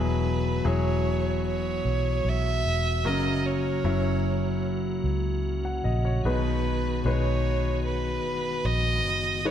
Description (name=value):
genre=pop ballad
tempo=75 BPM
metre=4/4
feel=straight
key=B major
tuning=A4 = 440 Hz
part: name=rich violin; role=melody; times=0.0-9.5 s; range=B4 to E5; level=-30 LUFS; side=right 3 dB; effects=none
part: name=bright concert grand piano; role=accompaniment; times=0.0-9.5 s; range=G#2 to F#5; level=-30 LUFS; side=left 2 dB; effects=none
part: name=tonewheel organ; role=sustained chords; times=0.0-9.5 s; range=C#3 to G#4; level=-32 LUFS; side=equal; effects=overdrive, chorus vibrato
part: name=vintage muted fingered electric bass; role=bass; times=0.0-9.5 s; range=E1 to C#2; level=-28 LUFS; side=equal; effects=none
room=moderate scoring stage reverb, RT60 1.6 s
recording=none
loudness=-24 LUFS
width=side -9 dB against mid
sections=0.0-9.5 A section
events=none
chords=0.0 Eadd9; 3.1 F#; 6.3 B6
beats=0.65 1.45 2.25 | 3.05 3.85 4.65 5.45 | 6.25 7.05 7.85 8.65 | 9.45